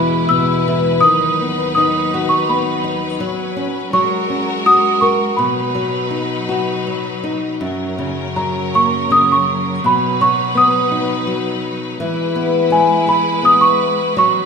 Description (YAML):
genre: children's music, lullaby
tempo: 83 BPM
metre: 3/4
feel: rubato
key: B major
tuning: A4 = 442 Hz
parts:
  - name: worn celesta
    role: melody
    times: 0.0-14.5 s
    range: G#5 to E6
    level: -14 LUFS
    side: right 2 dB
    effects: none
  - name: flamenco guitar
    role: accompaniment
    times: 0.0-14.5 s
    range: E2 to A#4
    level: -19 LUFS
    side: left 3 dB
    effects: none
  - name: bright studio string section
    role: sustained chords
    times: 0.0-14.5 s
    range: D#2 to B4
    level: -23 LUFS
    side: left 1 dB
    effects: none
room: moderate concert hall reverb, RT60 2.4 s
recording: minimal, uncompressed stereo recording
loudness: -14 LUFS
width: side -6 dB against mid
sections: 0.0-7.6 A section; 7.6-14.5 B section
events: none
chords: 0.0 E; 1.0 B/D#; 3.2 F#sus4; 3.9 F#add9; 5.4 B; 7.6 F#; 9.8 B; 12.0 E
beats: 0.29 | 1.04 1.77 2.49 | 3.21 3.92 4.65 | 5.38 6.11 6.86 | 7.62 8.36 9.11 | 9.84 10.56 11.28 | 11.99 12.71 13.44 | 14.17